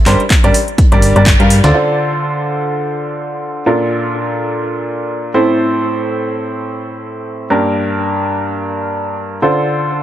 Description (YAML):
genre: piano house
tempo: 125 BPM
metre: 4/4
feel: swing 57% on 16ths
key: D minor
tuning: A4 = 439 Hz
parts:
  - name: clear upright piano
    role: riff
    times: 0.1-10.0 s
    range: G2 to F5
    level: -14 LUFS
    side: equal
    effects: sidechain pumping, low-pass filter, ping-pong delay
  - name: solid FM bass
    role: bass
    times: 0.1-1.7 s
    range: G1 to G2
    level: -12 LUFS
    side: equal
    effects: sidechain pumping
  - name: dusty soul sampler-style drum kit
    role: drums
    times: 0.1-1.7 s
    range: hi-hat, snare drum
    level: -27 LUFS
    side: right 1 dB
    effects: none
  - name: house drum kit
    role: drums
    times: 0.1-1.9 s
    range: crash cymbal, handclaps, hi-hat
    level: -18 LUFS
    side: equal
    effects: overdrive, low-pass filter on hats, low-pass filter on snare, low-pass filter on cymbals, low-pass filter on room
  - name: electronic kick drum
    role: drums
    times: 0.3-1.4 s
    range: none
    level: -11 LUFS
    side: equal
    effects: overdrive
room: light reverb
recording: none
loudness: -12 LUFS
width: side -12 dB against mid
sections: 0.0-1.7 A section; 1.7-10.0 B section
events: band accent 1.3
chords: 0.0 Gm; 1.7 Dm7; 3.7 Bbmaj7; 5.3 Am; 7.5 Gm; 9.4 Dm7